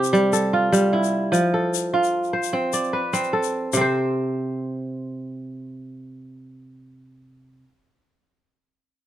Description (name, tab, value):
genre	west african traditional, West African string and xylophone music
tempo	100 BPM (dotted quarters)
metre	12/8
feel	straight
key	unclear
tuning	A4 = 440 Hz
part	kora	arpeggios	0.0-7.7 s	C3 to D5	-20 LUFS	right 1 dB	none
part	egg shaker	percussion	0.0-3.9 s	none	-29 LUFS	left 14 dB	none
room	light reverb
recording	none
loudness	-20 LUFS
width	side -12 dB against mid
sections	0.0-3.7 A section; 3.7-6.1 B section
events	none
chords	0.0 C; 1.3 F; 3.7 N.C.